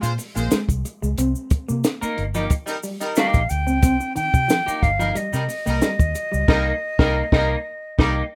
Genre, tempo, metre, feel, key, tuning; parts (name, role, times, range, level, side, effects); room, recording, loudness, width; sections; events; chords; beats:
funk; 90 BPM; 4/4; straight; A4 = 439 Hz
warm horn section; second line; 0.0-8.2 s; G3 to C5; -29 LUFS; equal
vintage muted fingered electric bass; bass; 0.0-8.2 s; G1 to C3; -27 LUFS; equal
compact cocktail drum kit; drums; 0.0-8.2 s; crash cymbal, hi-hat, kick drum, snare drum; -21 LUFS; equal
tube shaker; percussion; 0.0-6.5 s; -38 LUFS; equal
electric guitar at the edge of break-up; riff; 0.2-6.4 s; Eb3 to C4; -29 LUFS; equal; spring reverb
clean electric guitar; accompaniment; 2.0-8.2 s; Bb3 to Bb4; -27 LUFS; equal
silver concert flute; melody; 3.2-8.4 s; Eb5 to G5; -26 LUFS; equal
light reverb; rough home demo mix; -21 LUFS; mono
0.0-8.4 A section
band accent 6.5-8.4
0.0 Bb7sus2; 1.2 Cm7
0.52 | 1.18 1.84 2.50 3.17 | 3.83 4.49 5.16 5.82 | 6.48 7.14 7.81